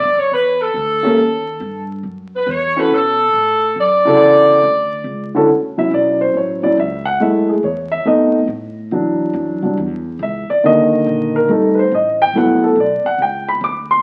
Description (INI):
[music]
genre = jazz, big band swing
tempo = 140 BPM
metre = 4/4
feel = swing 65% on 8ths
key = D major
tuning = A4 = 440 Hz
[part]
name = warm saxophone section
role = melody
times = 0.0-5.3 s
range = A4 to D5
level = -16 LUFS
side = equal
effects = none
[part]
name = upright bass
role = bass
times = 0.0-14.0 s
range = F1 to B2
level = -32 LUFS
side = equal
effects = none
[part]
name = dark grand piano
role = accompaniment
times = 1.0-14.0 s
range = C#3 to D6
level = -16 LUFS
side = equal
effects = none
[sound]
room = wet club reverb, RT60 0.8 s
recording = very old 78 rpm record, vinyl crackle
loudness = -15 LUFS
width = mono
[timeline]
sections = 0.0-5.5 A section; 5.5-14.0 B section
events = grand piano solo 5.5-14.0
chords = 0.3 Em7; 1.2 Eb; 2.0 Dmaj9; 7.2 F#m7; 8.1 F7#11; 8.9 E7sus2; 10.6 Cm7; 11.5 F9; 12.3 Gmaj13